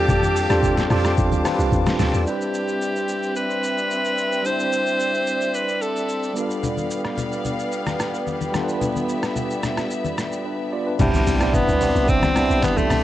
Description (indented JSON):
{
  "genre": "amapiano",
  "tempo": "110 BPM",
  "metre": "4/4",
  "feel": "straight",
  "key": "C major",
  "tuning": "A4 = 440 Hz",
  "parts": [
    { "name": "edgy alto saxophone", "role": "melody", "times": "0.0-6.4, 11.0-13.0 s", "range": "G3 to C5", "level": "-23 LUFS", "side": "equal", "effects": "cassette tape, analog delay" },
    { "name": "tine electric piano", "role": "accompaniment", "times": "0.0-13.0 s", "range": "G3 to D5", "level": "-24 LUFS", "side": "equal", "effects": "medium stereo tremolo" },
    { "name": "warm studio string section", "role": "sustained chords", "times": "0.0-13.0 s", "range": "B3 to D6", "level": "-28 LUFS", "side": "equal", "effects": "sidechain pumping" },
    { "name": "percussive tonewheel organ", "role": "stabs", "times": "0.0-2.2 s", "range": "D4 to A4", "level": "-29 LUFS", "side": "equal", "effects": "overdrive, fast rotary speaker, analog delay" },
    { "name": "deep log drum bass", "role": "bass", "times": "0.0-2.3, 11.0-13.0 s", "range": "B1 to F2", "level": "-23 LUFS", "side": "equal", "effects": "none" },
    { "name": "trip hop sampler-style drum kit", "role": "drums", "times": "0.1-13.0 s", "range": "crash cymbal, handclaps, hi-hat, kick drum, rim click, shaker, snare drum", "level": "-26 LUFS", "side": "equal", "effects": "overdrive" },
    { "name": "congas", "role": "percussion", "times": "0.1-2.1, 6.6-13.0 s", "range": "none", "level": "-29 LUFS", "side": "left 5 dB", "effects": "none" },
    { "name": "impact", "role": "sound effects", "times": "11.0-13.0 s", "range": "none", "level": "-28 LUFS", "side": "equal", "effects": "none" }
  ],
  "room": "digital ambience",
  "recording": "home recording on cassette, nothing above 10.4 kHz",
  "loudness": "-19 LUFS",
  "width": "side -13 dB against mid",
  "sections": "0.0-2.3 A section; 2.3-11.0 B section; 11.0-13.0 A section",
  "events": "drop 0.0-2.3, 11.0-13.0; impact 11.0-13.0",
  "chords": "0.0 F69; 2.3 Cmaj9; 6.4 G7; 11.0 Cmaj9"
}